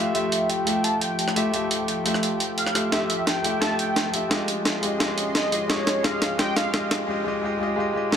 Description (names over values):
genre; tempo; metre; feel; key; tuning
liquid drum and bass; 173 BPM; 4/4; straight; unclear; A4 = 436 Hz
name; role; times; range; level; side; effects
warm velvety synth lead; melody; 0.0-6.9 s; Db5 to A5; -28 LUFS; right 1 dB; chorus, digital delay
dark concert grand piano; accompaniment; 0.0-8.2 s; Ab3 to E5; -26 LUFS; left 1 dB; ping-pong delay
lush unison pad; sustained chords; 0.0-7.1 s; F3 to C6; -31 LUFS; equal; chorus
breakbeat sampler-style drum kit; drums; 0.1-8.2 s; hi-hat, rim click, snare drum; -25 LUFS; equal; none
room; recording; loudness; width
light reverb; none; -21 LUFS; side -8 dB against mid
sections
0.0-8.2 A section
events
build-up 0.0-8.2; drum fill 2.9-7.1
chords
0.0 Fmaj9; 4.3 Dbmaj9